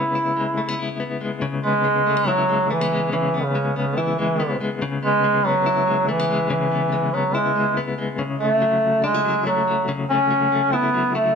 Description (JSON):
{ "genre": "indie pop", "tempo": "142 BPM", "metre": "4/4", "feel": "straight", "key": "unclear", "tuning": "A4 = 440 Hz", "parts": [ { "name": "warm duduk", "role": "melody", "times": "0.0-11.4 s", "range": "C#3 to E4", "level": "-19 LUFS", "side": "right 1 dB", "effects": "analog delay" }, { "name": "direct-recorded clean electric guitar", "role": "arpeggios", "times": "0.0-11.4 s", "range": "C#3 to G#4", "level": "-24 LUFS", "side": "left 4 dB", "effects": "tremolo" } ], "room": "moderate studio reverb, RT60 0.6 s", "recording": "none", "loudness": "-18 LUFS", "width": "side -6 dB against mid", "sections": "0.0-1.4 A section; 1.4-11.4 B section", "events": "none", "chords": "0.0 C#m7; 8.2 F#m7/C#" }